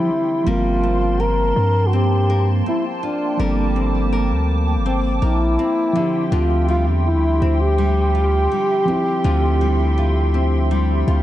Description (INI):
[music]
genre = contemporary R&B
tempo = 82 BPM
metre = 4/4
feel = straight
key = G dorian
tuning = A4 = 440 Hz
[part]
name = breathy trombone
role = melody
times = 0.0-11.2 s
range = D4 to Bb4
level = -21 LUFS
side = equal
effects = digital delay
[part]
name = muted felt-like synth keys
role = accompaniment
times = 0.0-11.2 s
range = F3 to E5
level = -26 LUFS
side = right 2 dB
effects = chorus
[part]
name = hollow soft pad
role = sustained chords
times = 0.0-11.2 s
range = Bb3 to D6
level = -27 LUFS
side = right 2 dB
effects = ensemble chorus
[part]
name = nylon-string guitar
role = arpeggios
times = 0.0-11.2 s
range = D3 to Bb4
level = -26 LUFS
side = left 6 dB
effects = digital delay
[part]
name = long sustained 808-style bass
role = bass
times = 0.0-11.2 s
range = G1 to G2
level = -18 LUFS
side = equal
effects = none
[sound]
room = small room ambience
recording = nothing above 10.4 kHz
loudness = -16 LUFS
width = side -13 dB against mid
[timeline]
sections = 0.5-11.2 A section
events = none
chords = 0.5 Gm11; 6.0 Dm11